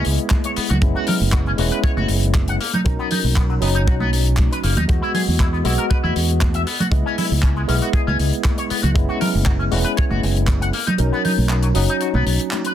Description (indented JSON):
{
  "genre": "nu-disco, nu disco",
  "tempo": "118 BPM",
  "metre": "4/4",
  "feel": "straight",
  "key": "unclear",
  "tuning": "A4 = 440 Hz",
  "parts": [
    { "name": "barky tine electric piano", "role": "accompaniment", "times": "0.0-12.7 s", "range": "F#3 to D#5", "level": "-24 LUFS", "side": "equal", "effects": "medium stereo tremolo, slapback echo" },
    { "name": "electric guitar with an envelope filter", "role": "riff", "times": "0.0-12.7 s", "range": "F#3 to F#5", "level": "-26 LUFS", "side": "left 3 dB", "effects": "wide subtle chorus, slapback echo" },
    { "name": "fingered electric bass", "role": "bass", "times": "0.0-12.4 s", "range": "E1 to E2", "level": "-19 LUFS", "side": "equal", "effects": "none" },
    { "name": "tight funk drum kit", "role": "drums", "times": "0.0-12.7 s", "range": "handclaps, hi-hat", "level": "-26 LUFS", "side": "left 4 dB", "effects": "none" },
    { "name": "cabasa and congas", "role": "percussion", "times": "0.2-12.7 s", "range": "none", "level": "-26 LUFS", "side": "right 2 dB", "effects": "none" },
    { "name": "kick drum", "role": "drums", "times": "0.3-10.6 s", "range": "none", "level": "-19 LUFS", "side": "equal", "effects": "none" }
  ],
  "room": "small room ambience",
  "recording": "dense, heavily limited modern master",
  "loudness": "-16 LUFS",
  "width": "side -11 dB against mid",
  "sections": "0.0-12.7 A section",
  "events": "kick drops out 11.0-12.7",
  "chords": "0.0 C#m9; 0.8 F#9sus4; 2.6 Bmaj9; 4.9 Emaj9; 6.7 C#m9; 9.0 F#9sus4; 10.7 Bmaj9",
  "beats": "0.31 | 0.82 1.33 1.84 2.35 | 2.85 3.36 3.87 4.38 | 4.89 5.40 5.91 6.42 | 6.92 7.43 7.94 8.45 | 8.96 9.46 9.97 10.48 | 10.99 11.50 12.01 12.52"
}